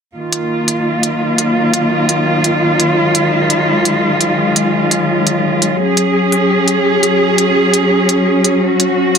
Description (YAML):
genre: half-time drum and bass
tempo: 170 BPM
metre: 4/4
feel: swing 55% on 16ths, half-time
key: Eb minor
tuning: A4 = 437 Hz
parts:
  - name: dark studio cello section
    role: sustained chords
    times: 0.2-9.2 s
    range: Eb3 to Ab4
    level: -12 LUFS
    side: right 1 dB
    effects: none
  - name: metallic inharmonic drone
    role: texture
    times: 1.0-9.2 s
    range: Gb3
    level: -19 LUFS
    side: left 3 dB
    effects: chorus, built-in reverb
  - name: electronic hi-hat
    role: drums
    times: 0.3-9.2 s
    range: none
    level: -15 LUFS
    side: right 1 dB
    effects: none
room: moderate digital room reverb, RT60 1.1 s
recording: none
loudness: -11 LUFS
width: side -6 dB against mid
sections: 0.1-9.2 A section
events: none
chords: 0.1 Ebm; 5.8 Gbsus2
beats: | 0.15 0.50 0.85 1.21 | 1.56 1.91 2.27 2.62 | 2.97 3.33 3.68 4.03 | 4.38 4.74 5.09 5.44 | 5.80 6.15 6.50 6.86 | 7.21 7.56 7.91 8.27 | 8.62 8.97